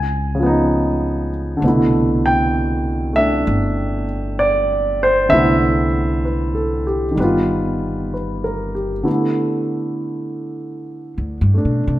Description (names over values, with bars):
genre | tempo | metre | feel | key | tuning
jazz ballad | 65 BPM | 4/4 | swing 68% on 8ths | C major | A4 = 439 Hz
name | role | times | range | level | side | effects
warm grand piano | accompaniment | 0.0-12.0 s | B2 to Ab5 | -17 LUFS | equal | none
upright bass | bass | 0.0-12.0 s | G1 to C3 | -22 LUFS | equal | none
room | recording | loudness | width
wet large studio reverb, RT60 1.4 s | none | -16 LUFS | side -14 dB against mid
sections
0.0-9.1 A section; 9.1-12.0 B section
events
upright bass solo 9.1-12.0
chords
0.0 Db9; 1.6 Cmaj13; 7.2 Gaug7; 9.1 Cmaj13 (rootless)